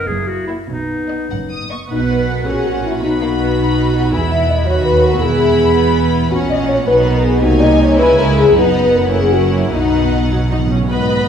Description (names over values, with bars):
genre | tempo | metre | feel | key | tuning
quick classical-period movement for symphony orchestra | 96-112 BPM (dotted quarters) | 6/8 | rubato | B major | A4 = 438 Hz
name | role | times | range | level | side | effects
dark studio violin section | melody | 0.0-11.3 s | B4 to D#6 | -26 LUFS | left 4 dB | none
bright clarinet | second line | 0.0-1.3 s | D#4 to G#4 | -22 LUFS | equal | none
warm studio violin section | second line | 0.0-11.3 s | A#3 to B5 | -21 LUFS | left 2 dB | none
rich studio viola section | accompaniment | 0.0-11.3 s | F#3 to D#5 | -20 LUFS | right 4 dB | none
dark French horn section | sustained chords | 0.0-11.3 s | A#3 to E5 | -16 LUFS | left 3 dB | none
warm studio cello section | bass | 0.1-11.3 s | D#2 to C#3 | -20 LUFS | right 2 dB | none
warm studio double bass section | bass | 0.1-11.3 s | E1 to D#2 | -20 LUFS | right 2 dB | none
timpani | percussion | 9.7-10.9 s | B2 | -21 LUFS | right 1 dB | none
room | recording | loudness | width
wet recital hall reverb, RT60 1.4 s | heard from further back in the room | -12 LUFS | side -8 dB against mid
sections
0.0-1.9 A section; 1.9-10.9 A section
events
timpani fill 9.7-10.9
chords
0.1 F#7; 0.7 B; 1.9 B5; 2.5 F#/A#; 3.0 B; 4.1 E5; 4.7 B/D#; 5.2 E; 6.3 F#/A#; 6.9 B; 7.4 G#/B#; 8.0 C#m; 8.5 B/F#; 9.1 F#7; 9.7 B